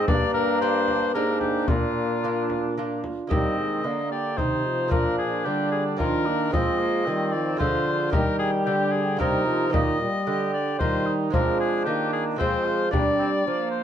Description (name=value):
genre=classical, renaissance-style consort dance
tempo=112 BPM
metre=3/4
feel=straight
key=unclear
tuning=A4 = 439 Hz
part: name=warm oboe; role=melody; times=0.0-13.8 s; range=F4 to Eb5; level=-28 LUFS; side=left 4 dB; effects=none
part: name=mellow cor anglais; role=second line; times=0.0-13.8 s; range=Bb3 to G4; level=-31 LUFS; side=right 5 dB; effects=none
part: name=clear trombone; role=accompaniment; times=0.0-13.8 s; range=Eb3 to Bb3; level=-29 LUFS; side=left 3 dB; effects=none
part: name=lute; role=accompaniment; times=0.0-13.8 s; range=G2 to Eb5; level=-29 LUFS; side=right 3 dB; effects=none
part: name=mellow bassoon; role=bass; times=0.0-13.8 s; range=G2 to G3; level=-28 LUFS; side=right 2 dB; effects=none
part: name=frame drum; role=percussion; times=0.1-13.2 s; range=none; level=-26 LUFS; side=left 2 dB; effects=none
room=moderate stone room reverb, RT60 1.0 s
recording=dark, warm production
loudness=-21 LUFS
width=side -9 dB against mid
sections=0.0-3.3 A section; 3.3-13.8 B section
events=none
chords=0.1 Gm; 1.7 Bb; 3.3 Eb; 4.9 Bb; 6.5 Fm; 8.1 Eb; 11.3 Fm; 12.9 Gm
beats=| 0.08 0.61 1.14 | 1.68 2.22 2.76 | 3.31 3.84 4.38 | 4.92 5.45 5.99 | 6.53 7.06 7.59 | 8.13 8.66 9.20 | 9.74 10.27 10.80 | 11.33 11.87 12.40 | 12.93 13.46